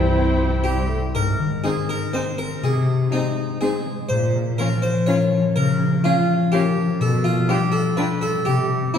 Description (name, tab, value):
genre	cinematic, playful, whimsical film cue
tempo	123 BPM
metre	3/4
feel	straight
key	Ab major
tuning	A4 = 435 Hz
part	warm studio violin section	melody	0.0-9.0 s	F5 to Ab5	-36 LUFS	left 2 dB	none
part	dark clarinet	second line	0.0-0.9 s	C5	-35 LUFS	right 4 dB	none
part	rich chamber violin section	second line	0.0-9.0 s	Eb4 to F4	-32 LUFS	equal	none
part	rich studio viola section	accompaniment	0.0-9.0 s	C4 to D4	-29 LUFS	equal	none
part	mellow French horn section	sustained chords	0.0-1.0 s	E3 to A3	-30 LUFS	left 1 dB	none
part	concert harp	arpeggios	0.0-9.0 s	Ab2 to E5	-21 LUFS	left 4 dB	none
part	rich chamber cello section	bass	0.0-8.9 s	Ab2 to E4	-29 LUFS	right 3 dB	none
part	rich chamber double bass section	bass	0.0-0.9 s	C2	-24 LUFS	right 1 dB	none
part	harpsichord	melody	0.6-9.0 s	Eb4 to Db5	-24 LUFS	right 1 dB	none
room	wet scoring stage reverb, RT60 1.8 s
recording	heard from further back in the room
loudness	-18 LUFS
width	side -8 dB against mid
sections	0.0-1.1 A section; 1.1-9.0 B section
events	none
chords	0.0 C; 1.1 Ab; 2.6 Ab/C; 4.1 Bbm; 5.6 Bbm/Db; 7.0 G7/B; 8.5 C5